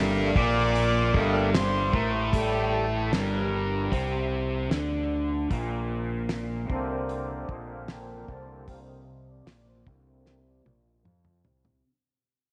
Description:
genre	psychedelic rock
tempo	76 BPM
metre	4/4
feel	straight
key	unclear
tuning	A4 = 440 Hz
part	hand-pumped harmonium	sustained chords	0.0-11.8 s	D3 to A5	-32 LUFS	equal	low-pass filter
part	thick fuzz guitar	riff	0.0-11.8 s	G2 to F4	-31 LUFS	equal	distortion, phaser, low-pass filter
part	growling fingered electric bass	bass	0.0-11.8 s	G1 to F2	-34 LUFS	equal	overdrive
part	cloth-damped thuddy drum kit	drums	0.4-11.8 s	hi-hat, kick drum, snare drum, toms	-31 LUFS	equal	none
room	moderate echo chamber reverb, RT60 2.3 s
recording	none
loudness	-27 LUFS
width	mono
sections	0.0-11.8 A section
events	fade-out 0.0-11.8; harmonium solo 0.0-11.8; filter sweep 0.0-11.8; drum fill 10.3-11.8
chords	0.0 Gmadd9; 5.5 Bbadd9

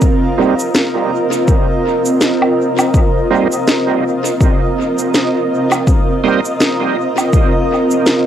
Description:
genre	ambient dub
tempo	82 BPM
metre	4/4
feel	swing 58% on 16ths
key	unclear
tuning	A4 = 440 Hz
part	granular cloud pad	sustained chords	0.0-8.3 s	C4 to Eb5	-15 LUFS	equal	built-in reverb
part	electronic cabasa, snare drum and woodblock	drums	0.0-8.2 s	none	-18 LUFS	equal	overdrive, cassette tape, dub echo
part	electronic kick drum	drums	0.0-7.5 s	none	-13 LUFS	left 1 dB	overdrive, cassette tape
part	bright tonewheel organ	stabs	0.4-6.4 s	G3 to Eb4	-18 LUFS	right 6 dB	overdrive, chorus vibrato, slow rotary speaker, low-pass filter, dub echo
room	moderate small room reverb, RT60 0.6 s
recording	home recording on cassette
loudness	-12 LUFS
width	side -10 dB against mid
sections	0.0-8.3 A section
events	filter sweep on tonewheel organ 0.0-8.3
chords	0.0 F7sus4

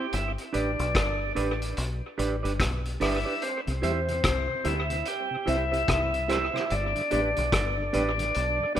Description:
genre	roots reggae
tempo	73 BPM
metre	4/4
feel	swing 62% on 16ths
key	C major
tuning	A4 = 442 Hz
part	tonewheel organ	melody	0.0-8.7 s	C4 to G4	-29 LUFS	equal	slow rotary speaker, tape echo
part	semi-hollow electric guitar	accompaniment	0.0-8.8 s	D4 to E5	-32 LUFS	right 4 dB	spring reverb, tape echo
part	deep dub fingered electric bass	bass	0.1-8.8 s	G1 to E2	-30 LUFS	left 1 dB	none
part	vintage drum kit	drums	0.1-8.8 s	hi-hat, kick drum, rim click	-31 LUFS	left 1 dB	tape echo
part	mellow tonewheel organ	accompaniment	3.7-8.8 s	G2 to E4	-35 LUFS	left 1 dB	slow rotary speaker, tape echo
room	light reverb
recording	rough home demo mix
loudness	-25 LUFS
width	side -10 dB against mid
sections	0.0-8.8 A section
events	none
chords	0.1 G; 3.4 C; 6.7 G

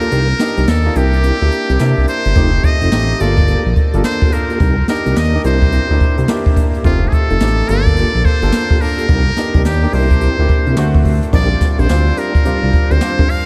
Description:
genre	R&B, new jack swing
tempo	107 BPM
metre	4/4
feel	swing 63% on 16ths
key	unclear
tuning	A4 = 440 Hz
part	trumpet with metal mute	melody	0.0-13.5 s	F4 to F5	-22 LUFS	equal	none
part	clear concert grand piano	accompaniment	0.0-13.5 s	G3 to A4	-23 LUFS	equal	subtle chorus
part	mellow tonewheel organ	stabs	0.0-13.3 s	Bb3 to Bb4	-26 LUFS	equal	chorus vibrato, stopped rotary speaker
part	jazz brush drum kit	drums	0.0-13.5 s	crash cymbal, hi-hat, kick drum, snare drum	-18 LUFS	equal	none
part	smooth synth bass	bass	0.1-13.0 s	F1 to C3	-17 LUFS	equal	none
room	light reverb, studio ambience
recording	none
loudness	-14 LUFS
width	mono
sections	0.0-11.3 A section; 11.3-13.5 B section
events	kick muted 0.1-2.4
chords	0.1 Cm7; 1.0 C7; 2.4 F7; 3.2 Gm9; 4.6 Cm7; 5.4 C7; 6.8 F7; 7.7 Gm9; 9.1 Cm7; 9.9 C7; 10.8 D7; 11.3 Bb69

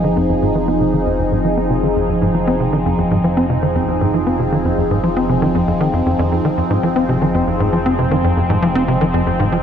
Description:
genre	ambient, sequencer-driven space music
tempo	117 BPM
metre	4/4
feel	straight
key	F minor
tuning	A4 = 437 Hz
part	phased analog pad	sustained chords	0.0-9.6 s	F3 to Ab4	-17 LUFS	equal	phaser, chorus
part	tight sequencer bass	riff	0.0-9.6 s	F2 to C4	-17 LUFS	equal	analog chorus, vintage 12-bit sampler grit, tape echo
part	fat analog bass	bass	0.0-9.6 s	F1	-25 LUFS	equal	none
room	wet huge ambient reverb, RT60 7.7 s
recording	none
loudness	-14 LUFS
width	side -8 dB against mid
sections	0.0-9.6 A section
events	none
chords	0.0 Fm7

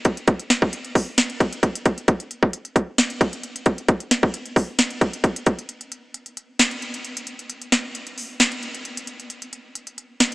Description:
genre	hip hop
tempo	133 BPM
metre	4/4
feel	half-time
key	none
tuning	none
part	trap drum kit	drums	0.0-10.3 s	hi-hat, kick drum, snare drum	-19 LUFS	equal	none
room	light reverb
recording	small speaker sound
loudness	-20 LUFS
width	side -24 dB against mid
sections	0.0-10.3 A section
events	break 5.7-10.3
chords	none

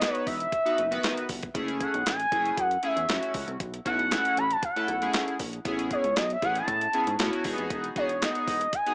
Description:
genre	early-eighties boogie funk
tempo	117 BPM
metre	4/4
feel	straight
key	unclear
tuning	A4 = 440 Hz
part	expressive portamento lead	melody	0.0-8.9 s	C#5 to B5	-26 LUFS	equal	chorus
part	chorused polysynth	accompaniment	0.0-8.9 s	D#3 to B4	-31 LUFS	equal	none
part	chorused synth bass	bass	0.0-8.7 s	E1 to A2	-35 LUFS	equal	none
part	crisp 8-bit digital drum machine	drums	0.0-8.9 s	handclaps, hi-hat, kick drum, snare drum	-31 LUFS	equal	overdrive
room	light reverb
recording	small speaker sound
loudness	-25 LUFS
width	side -31 dB against mid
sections	0.0-8.9 A section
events	none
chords	0.0 Emaj7(no3); 1.6 F#m7; 3.6 B7sus4; 5.7 Amaj7; 7.4 Emaj7

